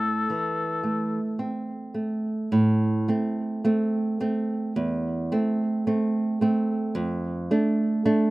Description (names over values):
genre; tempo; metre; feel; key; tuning
romantic duo for oboe and classical guitar; 54 BPM; 4/4; rubato; A minor; A4 = 437 Hz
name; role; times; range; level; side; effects
warm oboe; melody; 0.0-1.4 s; A4; -27 LUFS; left 4 dB; slapback echo
nylon-string guitar; accompaniment; 0.0-8.3 s; E2 to D4; -23 LUFS; right 1 dB; none
room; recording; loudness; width
little or no reverb; recorded outdoors, with no room sound; -23 LUFS; side -19 dB against mid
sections
0.0-2.5 A section; 2.5-8.3 B section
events
none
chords
0.0 Am; 7.0 Dm/F